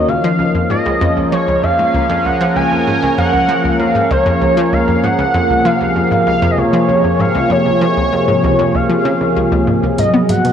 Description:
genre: ambient, sequencer-driven space music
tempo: 97 BPM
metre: 4/4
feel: straight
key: unclear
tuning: A4 = 435 Hz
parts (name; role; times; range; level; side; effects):
- expressive portamento lead; melody; 0.0-10.5 s; Db5 to Ab5; -16 LUFS; right 1 dB; analog chorus, ping-pong delay
- sweeping resonant pad; sustained chords; 0.0-10.5 s; C3 to Db5; -15 LUFS; equal; chorus
- analog pluck; riff; 0.0-10.5 s; Db2 to B3; -18 LUFS; equal; chorus, ping-pong delay
- electronic hi-hat and congas; percussion; 10.0-10.5 s; none; -26 LUFS; left 1 dB; none
room: wet plate reverb, RT60 3.1 s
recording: worn, warbling old tape, cassette tape, warbly pitch drift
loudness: -11 LUFS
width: side -8 dB against mid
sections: 0.0-10.0 A section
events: none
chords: 0.1 Db6; 10.0 G#m7

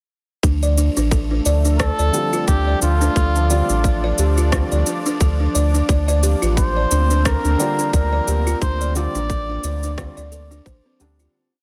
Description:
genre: organic downtempo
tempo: 88 BPM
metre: 4/4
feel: swing 56% on 16ths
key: D minor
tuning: A4 = 440 Hz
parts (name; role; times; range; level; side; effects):
- warm analog pad; sustained chords; 0.4-11.3 s; F3 to D5; -31 LUFS; equal; chorus, tremolo, sidechain pumping
- buzzing kalimba; arpeggios; 0.4-11.3 s; C4 to D5; -27 LUFS; equal; vintage 12-bit sampler grit, delay
- warm sub bass; bass; 0.4-11.3 s; A1 to D2; -21 LUFS; equal; none
- electronic kick drum; drums; 0.4-10.8 s; none; -22 LUFS; equal; overdrive
- electronic shaker and rim click; drums; 0.4-11.3 s; none; -28 LUFS; equal; overdrive
- trumpet with cup mute; melody; 1.8-9.9 s; F4 to D5; -26 LUFS; equal; delay
- felt-muted upright piano; accompaniment; 2.1-11.3 s; D3 to F4; -31 LUFS; equal; sidechain pumping, delay
room: light reverb, digital ambience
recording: dense, heavily limited modern master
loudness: -18 LUFS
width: mono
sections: 0.4-11.3 groove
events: fade-out 7.7-11.3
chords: 0.4 Dm; 5.9 Bbadd9

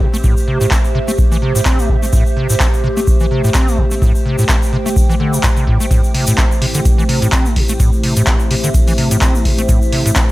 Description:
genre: acid house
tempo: 127 BPM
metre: 4/4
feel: swing 56% on 16ths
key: A minor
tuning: A4 = 441 Hz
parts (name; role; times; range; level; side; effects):
- acid bass, square; riff; 0.0-10.2 s; A2 to C4; -18 LUFS; equal; overdrive, analog chorus, cassette tape, analog delay
- electronic kick drum; drums; 0.0-10.3 s; none; -14 LUFS; equal; none
- warbly tape-like pad; texture; 0.0-10.3 s; A3 to G5; -21 LUFS; right 1 dB; chorus, built-in reverb, phaser, sidechain pumping
- egg shaker; percussion; 0.1-10.3 s; none; -26 LUFS; left 1 dB; none
- booming analog drum machine; drums; 0.7-10.3 s; handclaps, hi-hat; -20 LUFS; equal; none
- dark analog pad; sustained chords; 5.9-10.3 s; A3 to C5; -23 LUFS; left 1 dB; chorus, sidechain pumping
room: light reverb, digital ambience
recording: none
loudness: -11 LUFS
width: side -18 dB against mid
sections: 0.0-10.3 A section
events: none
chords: 0.0 Am

